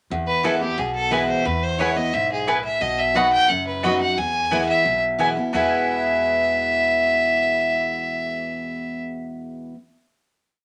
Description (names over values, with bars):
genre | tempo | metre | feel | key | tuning
bluegrass | 177 BPM | 4/4 | straight | E major | A4 = 440 Hz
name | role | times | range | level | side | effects
picked steel-string acoustic guitar | accompaniment | 0.1-9.7 s | E2 to F#4 | -26 LUFS | equal | none
upright bass | bass | 0.1-9.7 s | F#1 to E2 | -38 LUFS | equal | none
clear fiddle | melody | 0.3-9.0 s | G4 to G#5 | -24 LUFS | equal | none
mandolin | stabs | 0.4-9.8 s | B3 to B5 | -28 LUFS | equal | none
room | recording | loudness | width
moderate club reverb, RT60 0.5 s | none | -21 LUFS | mono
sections
0.1-5.5 A section; 5.5-8.2 final chord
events
none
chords
0.1 E; 2.8 B; 4.2 E